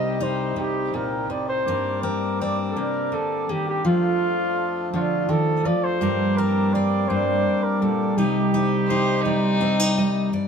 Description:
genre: acoustic folk-pop ballad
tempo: 55 BPM (dotted quarters)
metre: 6/8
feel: straight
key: G minor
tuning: A4 = 441 Hz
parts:
  - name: mellow flugelhorn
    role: melody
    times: 0.0-10.0 s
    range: F4 to Eb5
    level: -26 LUFS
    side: equal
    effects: none
  - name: fingerpicked steel-string acoustic guitar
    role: accompaniment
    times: 0.0-10.5 s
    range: G2 to Eb5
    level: -25 LUFS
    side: left 2 dB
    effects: none
  - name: pedal harmonium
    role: sustained chords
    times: 0.0-10.3 s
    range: C2 to D5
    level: -30 LUFS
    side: left 1 dB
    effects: none
  - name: concert harp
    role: arpeggios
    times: 0.0-10.5 s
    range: F3 to G4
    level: -25 LUFS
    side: right 3 dB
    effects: none
  - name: rich violin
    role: second line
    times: 8.9-10.3 s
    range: Eb4 to C5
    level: -25 LUFS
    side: left 3 dB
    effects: none
room: light reverb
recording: minimal, uncompressed stereo recording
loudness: -20 LUFS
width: side -6 dB against mid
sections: 0.0-10.3 A section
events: none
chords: 0.0 Cm; 1.7 Gm; 3.8 Dm/F; 6.0 Gm; 8.2 Cm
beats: 0.56 | 1.66 2.75 | 3.84 4.93 | 6.00 7.08 | 8.16 9.25 | 10.34

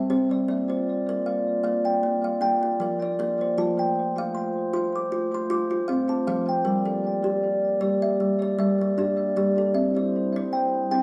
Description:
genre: world meditative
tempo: 78 BPM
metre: 4/4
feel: swing 55% on 16ths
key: Bb lydian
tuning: A4 = 440 Hz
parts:
  - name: kalimba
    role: arpeggios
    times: 0.0-11.0 s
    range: F3 to D6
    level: -27 LUFS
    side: equal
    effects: tape echo
  - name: glass harmonica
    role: sustained chords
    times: 0.5-11.0 s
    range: G3 to D5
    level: -28 LUFS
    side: equal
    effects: none
room: wet echo chamber reverb, RT60 1.4 s, small room ambience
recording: dark, warm production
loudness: -25 LUFS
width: mono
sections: 0.0-11.0 A section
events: none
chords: 0.5 Bb; 3.6 F; 6.7 Gm; 9.8 C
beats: | 0.49 1.27 2.04 2.81 | 3.59 4.36 5.13 5.90 | 6.67 7.45 8.22 8.99 | 9.76 10.53

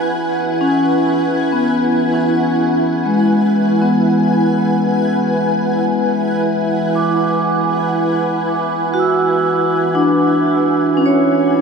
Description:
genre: ambient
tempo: 59 BPM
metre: 4/4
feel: straight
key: E mixolydian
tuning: A4 = 441 Hz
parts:
  - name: granular cloud pad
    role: sustained chords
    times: 0.0-11.6 s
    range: E4 to G#5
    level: -18 LUFS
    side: right 1 dB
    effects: built-in reverb
  - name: vibraphone with medium hard mallets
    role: arpeggios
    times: 0.0-11.6 s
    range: G#3 to E6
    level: -16 LUFS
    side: left 1 dB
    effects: tape echo
  - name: overtone-sweeping drone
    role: drone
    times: 0.0-11.6 s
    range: E3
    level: -22 LUFS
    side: right 2 dB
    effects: chorus, built-in reverb
room: wet huge ambient reverb, RT60 7.6 s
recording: dark, warm production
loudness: -13 LUFS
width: side -5 dB against mid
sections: 0.0-11.6 A section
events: none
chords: 0.0 E7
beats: | 0.10 1.12 2.14 3.15 | 4.17 5.19 6.21 7.22 | 8.24 9.26 10.27 11.29

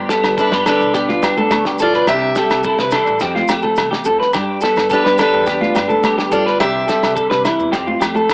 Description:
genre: highlife guitar band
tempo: 106 BPM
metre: 4/4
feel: straight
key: G mixolydian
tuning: A4 = 440 Hz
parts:
  - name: clean electric guitar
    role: accompaniment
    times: 0.0-8.3 s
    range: E2 to G4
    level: -22 LUFS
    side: equal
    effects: ensemble chorus, cassette tape
  - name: electric guitar through a small old amp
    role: arpeggios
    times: 0.0-8.3 s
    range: E4 to B4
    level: -16 LUFS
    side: equal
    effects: cassette tape
  - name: upright bass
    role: bass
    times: 0.0-8.3 s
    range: E1 to G3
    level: -29 LUFS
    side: equal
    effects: none
  - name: damped 70s drum kit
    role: drums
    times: 0.1-8.3 s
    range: kick drum, snare drum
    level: -22 LUFS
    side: equal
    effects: cassette tape
  - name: maracas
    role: percussion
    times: 0.1-8.3 s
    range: none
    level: -35 LUFS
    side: equal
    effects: none
  - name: agogo bells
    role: percussion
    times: 0.2-8.3 s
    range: none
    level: -23 LUFS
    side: equal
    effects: none
  - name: picked steel-string acoustic guitar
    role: melody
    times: 0.4-7.1 s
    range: D4 to E5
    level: -17 LUFS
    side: equal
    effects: cassette tape
  - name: congas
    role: percussion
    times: 0.7-8.3 s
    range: none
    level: -24 LUFS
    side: equal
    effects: none
room: moderate booth ambience, RT60 0.3 s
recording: home recording on cassette, AM radio sound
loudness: -13 LUFS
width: side -38 dB against mid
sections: 0.0-8.3 A section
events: none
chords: 0.0 Gadd9; 2.1 Cadd9; 3.2 F; 4.3 Gadd9; 6.6 Cadd9; 7.7 F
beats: 0.39 0.95 1.52 | 2.08 2.65 3.21 3.78 | 4.34 4.91 5.47 6.04 | 6.60 7.17 7.73 8.30

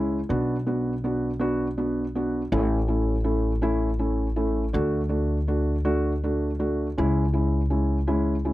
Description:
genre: six-eight pop ballad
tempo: 54 BPM (dotted quarters)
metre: 6/8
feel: straight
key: B minor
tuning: A4 = 440 Hz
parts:
  - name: felt-muted upright piano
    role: accompaniment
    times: 0.0-8.5 s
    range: G#3 to F#4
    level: -25 LUFS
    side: equal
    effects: none
  - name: upright bass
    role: bass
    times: 0.0-8.5 s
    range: A1 to D2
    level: -26 LUFS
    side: equal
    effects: none
room: light reverb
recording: dry, close 1970s-style studio recording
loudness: -22 LUFS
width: side -16 dB against mid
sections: 0.0-8.5 A section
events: none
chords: 0.3 Bm; 2.5 A; 4.8 D; 7.0 C#m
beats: | 0.29 1.41 | 2.52 3.64 | 4.75 5.87 | 6.98 8.10

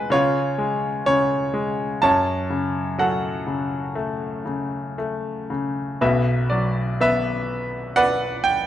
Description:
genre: classical, lyrical solo piano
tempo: 57-65 BPM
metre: 4/4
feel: rubato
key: F# minor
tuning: A4 = 439 Hz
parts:
  - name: bright grand piano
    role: solo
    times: 0.0-8.7 s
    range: B1 to A5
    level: -20 LUFS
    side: equal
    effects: none
room: moderate recital hall reverb, RT60 1.4 s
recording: close, detailed microphones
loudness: -20 LUFS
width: side -11 dB against mid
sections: 0.0-6.0 A section; 6.0-8.7 B section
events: none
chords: 0.1 C#; 2.0 F#m; 6.0 Bm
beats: 0.13 1.08 | 2.04 3.00 3.97 4.98 | 6.02 7.01 7.97

